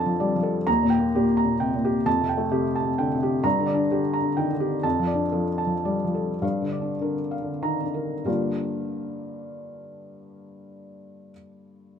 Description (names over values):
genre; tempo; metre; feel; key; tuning
neoclassical minimalist piano; 92-132 BPM; 3/4; rubato; G minor; A4 = 440 Hz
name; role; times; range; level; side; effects
felt-muted upright piano; solo; 0.0-12.0 s; Eb2 to Bb5; -23 LUFS; equal; none
room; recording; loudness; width
light reverb; minimal, uncompressed stereo recording; -22 LUFS; side -7 dB against mid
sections
0.0-8.3 A section; 8.3-11.9 B section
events
slowing down 4.1-8.3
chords
0.0 Dm/F; 0.7 Eb; 2.1 Fadd9; 3.4 Gm; 4.8 Dm/F; 6.4 Gm7